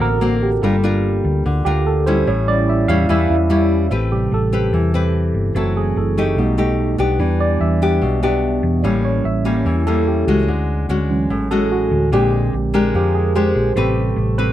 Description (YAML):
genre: bossa nova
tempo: 146 BPM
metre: 4/4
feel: straight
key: unclear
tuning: A4 = 440 Hz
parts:
  - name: barky tine electric piano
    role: accompaniment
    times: 0.0-14.5 s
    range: C3 to F5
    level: -20 LUFS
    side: right 4 dB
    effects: phaser
  - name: nylon-string guitar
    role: accompaniment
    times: 0.0-14.5 s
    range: A2 to B4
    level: -19 LUFS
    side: left 3 dB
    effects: none
  - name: hollow-body short-scale fingered electric bass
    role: bass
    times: 0.0-14.5 s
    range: F#1 to F2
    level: -19 LUFS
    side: equal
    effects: none
room: little or no reverb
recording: dry, close 1970s-style studio recording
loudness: -15 LUFS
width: side -12 dB against mid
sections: 0.0-3.9 A section; 3.9-14.5 A section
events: tine electric piano solo 0.0-3.9, 3.9-14.5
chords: 0.0 D7b13; 0.6 Gm7; 2.3 A7; 3.9 Am9; 5.6 F#m7b5; 6.4 B7b13; 7.2 Em7; 8.8 A7b9; 10.5 Dmaj9#11; 12.1 Bb13; 13.8 Am9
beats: 0.21 | 0.62 1.04 1.45 1.86 | 2.27 2.68 3.09 3.50 | 3.91 4.32 4.73 5.14 | 5.55 5.96 6.37 6.78 | 7.19 7.60 8.02 8.43 | 8.84 9.25 9.66 10.07 | 10.48 10.89 11.30 11.71 | 12.12 12.53 12.94 13.35 | 13.76 14.17